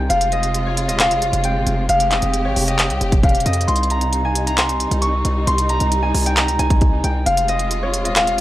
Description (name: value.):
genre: hip hop, trap.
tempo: 134 BPM.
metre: 4/4.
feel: half-time.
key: unclear.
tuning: A4 = 440 Hz.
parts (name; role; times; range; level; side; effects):
Celtic harp; melody; 0.0-8.4 s; Db5 to Db6; -20 LUFS; equal; none.
warm symphonic string section; sustained chords; 0.0-8.4 s; C3 to G4; -24 LUFS; left 1 dB; none.
hard-hitting 808-style bass; bass; 0.0-8.4 s; Eb1 to F2; -21 LUFS; equal; none.
trap drum kit; drums; 0.1-8.4 s; handclaps, hi-hat, kick drum; -19 LUFS; equal; none.
room: digital ambience.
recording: dry, gritty hardware recording.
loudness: -15 LUFS.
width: side -14 dB against mid.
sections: 0.0-8.4 A section.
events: none.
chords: 0.1 Fm; 3.7 Cm; 7.3 Fm.